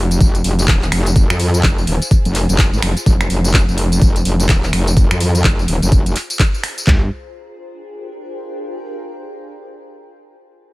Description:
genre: bass house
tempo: 126 BPM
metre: 4/4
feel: swing 60% on 16ths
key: unclear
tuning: A4 = 442 Hz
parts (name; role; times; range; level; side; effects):
- metallic wobble bass; bass; 0.0-7.1 s; Eb1 to F2; -16 LUFS; equal; distortion, chorus, tube saturation, sidechain pumping
- granular cloud pad; texture; 0.0-8.7 s; D4 to Bb5; -33 LUFS; equal; built-in reverb, sidechain pumping
- garage drum kit; drums; 0.1-6.9 s; finger snaps, handclaps, hi-hat, tambourine; -20 LUFS; equal; none
- garage drum kit; drums; 0.2-7.0 s; handclaps, kick drum, toms; -13 LUFS; equal; overdrive
room: little or no reverb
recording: none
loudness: -12 LUFS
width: side -20 dB against mid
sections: 0.0-6.9 A section; 6.9-8.8 B section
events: none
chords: 0.0 Fm; 6.9 Gm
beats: 0.20 0.68 | 1.16 1.63 2.11 2.59 | 3.06 3.54 4.01 4.49 | 4.97 5.44 5.92 6.40 | 6.87 7.35 7.82 8.30

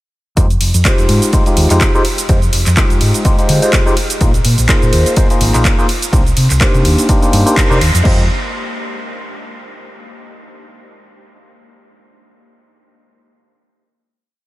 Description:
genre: filtered disco house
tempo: 125 BPM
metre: 4/4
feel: swing 56% on 16ths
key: F dorian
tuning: A4 = 440 Hz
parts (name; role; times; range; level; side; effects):
- overdriven tine electric piano; accompaniment; 0.4-8.2 s; Ab3 to C5; -17 LUFS; equal; phaser, vintage 12-bit sampler grit, sidechain pumping
- fingered electric bass; bass; 0.4-8.3 s; F1 to D3; -13 LUFS; equal; sidechain pumping
- house drum kit; drums; 0.4-8.2 s; crash cymbal, kick drum; -14 LUFS; equal; none
- house drum kit; drums; 0.4-8.0 s; cabasa, handclaps, hi-hat, ride cymbal; -18 LUFS; right 1 dB; sidechain pumping on hats, sidechain pumping on perc, sidechain pumping on cymbals
room: light reverb, digital ambience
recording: none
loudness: -10 LUFS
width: side -17 dB against mid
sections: 0.4-8.1 drop; 8.1-10.0 final chord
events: drop 0.4-8.1; band accent 7.6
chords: 0.4 Fm9; 4.2 Bb9sus4; 6.1 Cm9; 8.1 Fm9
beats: | 0.37 0.85 1.33 1.81 | 2.29 2.77 3.25 3.73 | 4.21 4.69 5.17 5.65 | 6.13 6.61 7.09 7.57 | 8.05

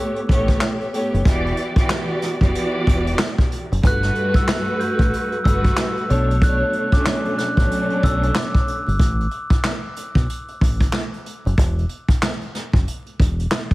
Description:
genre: hip hop, boom-bap hip-hop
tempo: 93 BPM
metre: 4/4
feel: swing 61% on 16ths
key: B minor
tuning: A4 = 440 Hz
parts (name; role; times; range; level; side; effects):
- warm studio string section; accompaniment; 0.0-8.8 s; G2 to D5; -22 LUFS; equal; high-pass filter, low-pass filter
- vintage brush drum kit; drums; 0.2-13.7 s; handclaps, hi-hat, kick drum, snare drum; -19 LUFS; equal; none
- deep dub fingered electric bass; bass; 0.3-13.5 s; E1 to B1; -21 LUFS; equal; none
- glockenspiel with rubber mallets; melody; 3.9-8.6 s; D6 to G6; -27 LUFS; equal; high-pass filter, low-pass filter, digital delay
room: small room reverb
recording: heavily compressed radio sound, multiband compression, vinyl crackle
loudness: -17 LUFS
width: side -19 dB against mid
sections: 0.0-13.7 A section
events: none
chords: 0.0 A7; 1.3 Em7; 3.8 Gmaj7; 6.1 Bm7; 9.0 N.C.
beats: 0.61 | 1.26 1.90 2.55 3.19 | 3.84 4.48 5.13 5.77 | 6.42 7.06 7.71 8.35 | 9.00 9.64 10.29 10.93 | 11.58 12.22 12.87 13.51

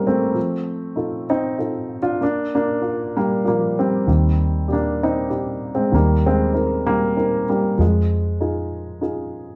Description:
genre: acoustic folk-pop ballad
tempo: 97 BPM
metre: 3/4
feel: straight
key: unclear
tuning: A4 = 441 Hz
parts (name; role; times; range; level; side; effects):
- dark upright piano; melody; 0.0-9.6 s; Eb3 to D5; -22 LUFS; equal; plate reverb
- vintage muted fingered electric bass; bass; 4.1-9.6 s; Eb2 to F2; -23 LUFS; equal; none
room: wet studio ambience, RT60 0.5 s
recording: heard from further back in the room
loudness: -20 LUFS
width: mono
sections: 0.0-9.6 A section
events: none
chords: 0.4 F7; 2.2 Bb; 4.1 Ebmaj7; 7.8 Fm7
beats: | 0.36 0.98 1.59 | 2.21 2.83 3.45 | 4.08 4.70 5.32 | 5.93 6.55 7.17 | 7.79 8.41 9.03

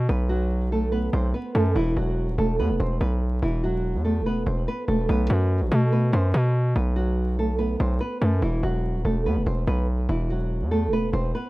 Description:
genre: hip hop, drill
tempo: 144 BPM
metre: 4/4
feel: half-time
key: unclear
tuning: A4 = 440 Hz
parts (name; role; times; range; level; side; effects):
- hard-hitting 808-style bass; bass; 0.0-11.3 s; D#1 to B2; -23 LUFS; equal; none
- nylon-string guitar; melody; 0.1-11.5 s; E3 to C5; -26 LUFS; right 1 dB; low-pass filter
room: small room reverb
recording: rough home demo mix, vinyl crackle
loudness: -21 LUFS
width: side -19 dB against mid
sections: 0.0-11.5 A section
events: none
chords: 0.0 B5; 1.8 Esus2; 5.1 B5; 8.4 Esus2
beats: | 0.09 0.51 0.92 1.34 | 1.76 2.17 2.59 3.01 | 3.42 3.84 4.26 4.67 | 5.09 5.51 5.92 6.34 | 6.76 7.17 7.59 8.01 | 8.42 8.84 9.26 9.67 | 10.09 10.51 10.92 11.34

